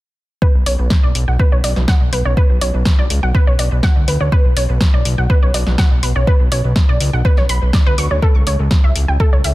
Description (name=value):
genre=progressive house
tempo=123 BPM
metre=4/4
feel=straight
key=B minor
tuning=A4 = 441 Hz
part: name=wide unison pluck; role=arpeggios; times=0.4-9.5 s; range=A4 to C#6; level=-21 LUFS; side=right 1 dB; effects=sidechain pumping, digital delay
part: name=electronic kick drum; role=drums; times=0.4-9.3 s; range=none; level=-13 LUFS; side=equal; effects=overdrive
part: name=fat analog bass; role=bass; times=0.5-9.5 s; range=B1 to D2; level=-17 LUFS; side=equal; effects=sidechain pumping
part: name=deep house drum kit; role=drums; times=0.7-9.5 s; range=hi-hat, snare drum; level=-22 LUFS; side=equal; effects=overdrive, sidechain pumping on hats
room=digital ambience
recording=dense, heavily limited modern master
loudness=-12 LUFS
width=side -18 dB against mid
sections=0.4-9.5 A section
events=none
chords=0.4 Bmadd9; 8.2 A/C#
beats=| 0.42 0.91 1.40 1.88 | 2.37 2.86 3.35 3.83 | 4.32 4.81 5.30 5.79 | 6.27 6.76 7.25 7.74 | 8.22 8.71 9.20